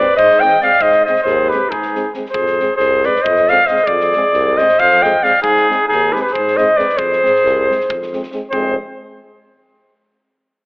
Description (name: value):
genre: balkan folk, Balkan brass band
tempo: 272 BPM (eighths)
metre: 7/8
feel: straight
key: F dorian sharp4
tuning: A4 = 445 Hz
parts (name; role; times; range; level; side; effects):
- warm flugelhorn; melody; 0.0-8.8 s; Ab4 to G5; -12 LUFS; equal; none
- clear clarinet; second line; 0.0-8.8 s; Eb4 to Eb5; -20 LUFS; equal; none
- mellow euphonium; accompaniment; 0.0-8.8 s; C4; -29 LUFS; equal; none
- mellow euphonium; accompaniment; 0.0-8.8 s; Ab3; -28 LUFS; right 1 dB; none
- big rock drum kit; percussion; 0.1-8.8 s; kick drum, snare drum; -34 LUFS; equal; none
- mellow tuba; bass; 0.2-8.8 s; F1 to Ab2; -23 LUFS; equal; none
room: moderate concert hall reverb, RT60 1.8 s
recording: telephone sound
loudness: -11 LUFS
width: side -32 dB against mid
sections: 0.0-8.5 A section; 8.5-10.1 B section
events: none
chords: 0.0 Ab; 2.3 Fm; 5.4 Ab; 7.0 Fm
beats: 0.15 0.37 0.58 | 0.80 1.02 1.24 1.46 1.68 1.90 2.12 | 2.34 2.56 2.78 3.00 3.22 3.44 3.67 | 3.88 4.11 4.33 4.55 4.77 4.99 5.21 | 5.43 5.65 5.87 6.09 6.32 6.54 6.76 | 6.98 7.20 7.42 7.64 7.87 8.09 8.31 | 8.53 8.75